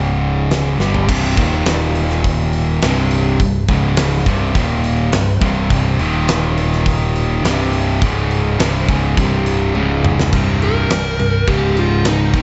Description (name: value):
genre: hard rock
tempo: 104 BPM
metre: 4/4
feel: straight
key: unclear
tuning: A4 = 440 Hz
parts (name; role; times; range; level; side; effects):
- high-gain lead guitar; melody; 0.0-0.5, 10.6-12.4 s; Eb4 to G5; -23 LUFS; equal; distortion, slapback echo
- distorted electric guitar; riff; 0.0-12.4 s; C2 to G3; -23 LUFS; equal; overdrive
- overdriven semi-hollow guitar; riff; 0.0-12.4 s; C2 to G3; -22 LUFS; equal; none
- picked electric bass; bass; 0.0-12.4 s; C1 to G1; -22 LUFS; equal; none
- huge arena drum kit; drums; 0.5-12.4 s; crash cymbal, hi-hat, kick drum, snare drum, toms; -21 LUFS; equal; none
room: light reverb, small room ambience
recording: nothing above 7.9 kHz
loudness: -16 LUFS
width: mono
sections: 0.0-1.1 A section; 1.1-10.3 B section; 10.3-12.4 C section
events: drum fill 0.8, 9.8-10.3; lead electric guitar solo 10.3-12.4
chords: 0.0 Db5; 0.8 G5; 1.1 C5; 1.4 Eb5; 2.8 C5; 3.7 Db5; 4.3 C5; 4.6 Eb5; 5.1 C5; 6.0 Eb5; 7.4 C5; 8.0 Db5; 8.6 C5; 9.8 Db5; 10.3 C5; 11.5 Db5